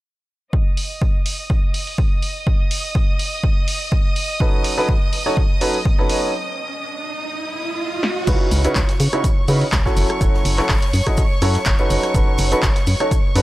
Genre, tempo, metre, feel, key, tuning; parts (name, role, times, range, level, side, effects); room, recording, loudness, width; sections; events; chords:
piano house; 124 BPM; 4/4; swing 54% on 16ths; A4 = 441 Hz
rich studio violin section; sustained chords; 0.5-13.4 s; C#5 to D#6; -27 LUFS; right 1 dB; sidechain pumping, low-pass filter
electronic kick drum; drums; 0.5-13.2 s; -18 LUFS; equal
punchy analog drum machine; drums; 0.8-13.4 s; crash cymbal, handclaps, hi-hat, rim click, snare drum; -25 LUFS; equal
clear upright piano; riff; 4.4-13.4 s; C#3 to D#5; -22 LUFS; right 1 dB; sidechain pumping, low-pass filter
riser; sound effects; 5.9-8.3 s; -28 LUFS; right 2 dB
organ-like FM bass; bass; 8.3-13.4 s; F#1 to C#3; -18 LUFS; equal; sidechain pumping
tight metal drum kit; drums; 8.3-13.4 s; hi-hat, shaker, snare drum; -35 LUFS; left 1 dB; high-pass filter on hats, high-pass filter on snare, high-pass filter on perc, high-pass filter on room
studio reverb; dry, gritty hardware recording; -16 LUFS; side -17 dB against mid
0.5-8.3 A section; 8.3-13.4 B section
riser 5.9-8.3; break 6.3-8.3; drum fill 8.0
0.5 N.C.; 4.2 B9/F#; 6.3 N.C.; 8.3 C#m11; 10.0 F#m7; 11.9 B9/F#